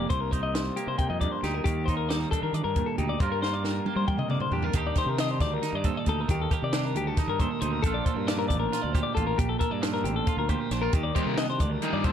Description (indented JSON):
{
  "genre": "math rock and midwest emo",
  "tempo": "271 BPM (eighths)",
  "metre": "7/8",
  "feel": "straight",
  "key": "unclear",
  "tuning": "A4 = 442 Hz",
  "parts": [
    { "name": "clean electric guitar", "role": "accompaniment", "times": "0.0-12.1 s", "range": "G2 to Bb4", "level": "-32 LUFS", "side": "right 10 dB", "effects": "none" },
    { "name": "clean electric guitar", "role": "arpeggios", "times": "0.0-12.1 s", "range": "G4 to G5", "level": "-30 LUFS", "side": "left 8 dB", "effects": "slapback echo" },
    { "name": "fuzz fingered electric bass", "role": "bass", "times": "0.0-12.1 s", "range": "A1 to G3", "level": "-31 LUFS", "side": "equal", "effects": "overdrive" },
    { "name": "compact cocktail drum kit", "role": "drums", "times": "0.1-12.1 s", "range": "hi-hat, kick drum, snare drum, toms", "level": "-28 LUFS", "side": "equal", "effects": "none" },
    { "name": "crunchy overdriven guitar", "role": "riff", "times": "11.2-12.1 s", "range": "G3 to G4", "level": "-29 LUFS", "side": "left 1 dB", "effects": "none" }
  ],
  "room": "little or no reverb",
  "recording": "dark, warm production, faint mains hum",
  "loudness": "-25 LUFS",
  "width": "side -9 dB against mid",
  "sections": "0.0-4.8 A section; 4.8-12.1 B section",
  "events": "drum fill 3.4-4.8",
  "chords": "0.1 Cm7; 1.7 Ebmaj7; 3.2 Gm7; 4.8 Ebmaj7; 7.8 Bbmaj7; 10.9 Ebmaj7"
}